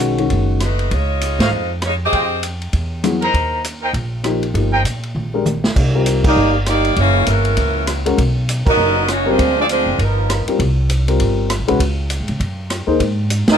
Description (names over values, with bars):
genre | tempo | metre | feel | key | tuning
jazz, big band swing | 199 BPM | 4/4 | swing 60% on 8ths | unclear | A4 = 440 Hz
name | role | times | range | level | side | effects
warm baby grand piano | accompaniment | 0.0-0.6, 3.0-13.0 s | D#3 to C5 | -18 LUFS | left 4 dB | none
upright bass | bass | 0.0-13.6 s | F#1 to Db3 | -19 LUFS | equal | none
vintage drum kit | drums | 0.2-13.5 s | crash cymbal, hi-hat, kick drum, ride cymbal, rim click, snare drum, toms | -22 LUFS | right 1 dB | none
bright saxophone section | melody | 0.6-2.4, 6.3-10.5, 13.5-13.6 s | F3 to Eb5 | -18 LUFS | equal | none
clear trumpet section | stabs | 1.4-4.8 s | Eb4 to Bb5 | -19 LUFS | equal | none
warm trombone section | second line | 6.2-10.4, 13.5-13.6 s | Db3 to A#4 | -19 LUFS | right 2 dB | none
room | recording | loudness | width
little or no reverb | close, detailed microphones | -15 LUFS | side -8 dB against mid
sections
0.0-5.8 A section; 5.8-13.6 B section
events
band accent 1.4, 6.2, 8.6; drum fill 5.2-5.8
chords
0.0 B9; 0.9 Dbmaj9; 2.1 Fm9; 2.7 E; 3.3 Eb6; 5.8 Cm9; 7.0 Gb7; 8.2 Bmaj7; 9.4 Dm7b5; 10.0 G7alt; 10.6 C5; 11.8 Db5; 12.4 Gbadd9; 13.0 Ab6